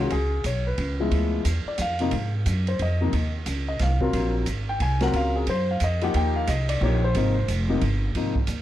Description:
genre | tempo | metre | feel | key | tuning
jazz piano trio | 179 BPM | 3/4 | swing 62% on 8ths | Ab mixolydian | A4 = 440 Hz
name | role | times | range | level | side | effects
dark concert grand piano | melody | 0.0-8.3 s | C3 to Ab5 | -26 LUFS | left 2 dB | plate reverb
upright bass | bass | 0.0-8.6 s | F1 to Ab2 | -24 LUFS | equal | none
open jazz drum kit | drums | 0.1-8.6 s | hi-hat, kick drum, ride cymbal, snare drum | -32 LUFS | right 3 dB | none
room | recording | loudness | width
light reverb | dark, warm production | -22 LUFS | side -13 dB against mid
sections
0.0-8.2 A section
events
grand piano solo 0.0-8.6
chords
0.1 Db7(no3); 1.1 Ddim7; 2.1 Ab7; 3.1 Dbsus2; 3.8 F5; 4.1 Bbm7; 6.1 Eb; 7.1 Ab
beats
| 0.11 0.44 0.78 | 1.11 1.45 1.78 | 2.12 2.46 2.79 | 3.12 3.46 3.79 | 4.13 4.47 4.80 | 5.14 5.47 5.81 | 6.14 6.48 6.81 | 7.15 7.48 7.82 | 8.15 8.49

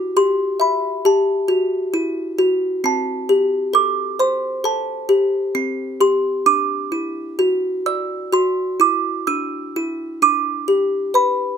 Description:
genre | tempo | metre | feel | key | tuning
children's music, lullaby | 66 BPM | 4/4 | rubato | G major | A4 = 440 Hz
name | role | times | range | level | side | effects
music box | solo | 0.0-11.6 s | C4 to E6 | -17 LUFS | equal | none
room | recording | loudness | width
light reverb | close, detailed microphones | -17 LUFS | side -7 dB against mid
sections
0.0-10.2 A section; 10.2-11.6 A section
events
none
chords
0.0 Emadd9; 2.8 Am7; 6.5 Dadd9; 10.2 G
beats
0.16 1.05 1.95 | 2.85 3.74 4.64 5.55 | 6.46 7.39 8.33 9.28 | 10.22 11.15

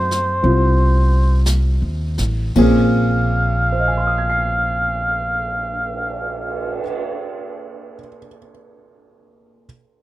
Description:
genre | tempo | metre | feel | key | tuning
jazz ballad | 52-62 BPM | 4/4 | swing 67% on 8ths | Bb minor | A4 = 439 Hz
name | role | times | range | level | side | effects
trumpet with cup mute | melody | 0.0-6.8 s | C5 to F5 | -21 LUFS | right 1 dB | none
warm concert grand piano | accompaniment | 0.0-9.7 s | Bb2 to C7 | -20 LUFS | left 1 dB | none
upright bass | bass | 0.0-6.8 s | A1 to Gb2 | -18 LUFS | equal | none
jazz brush drum kit | drums | 0.1-6.9 s | brushed snare drum, cymbal swell, hi-hat, kick drum, ride cymbal, snare drum | -30 LUFS | right 3 dB | none
room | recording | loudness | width
little or no reverb | close, detailed microphones | -16 LUFS | side -15 dB against mid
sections
0.0-2.6 A section; 2.6-7.1 B section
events
slowing down 0.0-2.6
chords
0.0 F7b9; 2.6 Bbm7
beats
0.44 1.46 | 2.57 3.71 4.85 6.00

